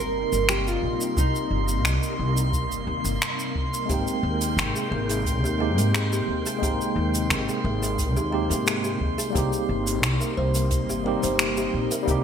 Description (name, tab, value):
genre	sunset chillout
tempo	88 BPM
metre	4/4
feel	straight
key	unclear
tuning	A4 = 440 Hz
part	nylon-string guitar	melody	0.0-3.2 s	Eb4 to Bb4	-28 LUFS	right 2 dB	lush chorus, digital delay
part	soft string machine	sustained chords	0.0-12.2 s	C3 to G5	-31 LUFS	equal	ensemble chorus
part	upright bass	bass	0.0-12.2 s	G1 to Ab2	-27 LUFS	equal	none
part	drifting glass-harmonics texture	texture	0.0-12.2 s	C6	-33 LUFS	right 2 dB	chorus, built-in reverb
part	jazz brush drum kit	drums	0.3-12.2 s	finger snaps, hi-hat, shaker	-27 LUFS	equal	gated reverb
part	electronic kick drum	drums	1.2-12.2 s	none	-28 LUFS	equal	none
part	tine electric piano	accompaniment	3.9-12.2 s	G3 to G5	-28 LUFS	right 1 dB	medium stereo tremolo, auto-pan, digital delay
part	kalimba	arpeggios	3.9-12.2 s	G4 to C5	-32 LUFS	left 2 dB	digital delay
room	light reverb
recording	bright 1980s-style digital production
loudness	-22 LUFS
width	side -8 dB against mid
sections	0.0-12.2 A section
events	none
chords	0.0 Cm7; 3.9 Abmaj9; 9.4 Cm7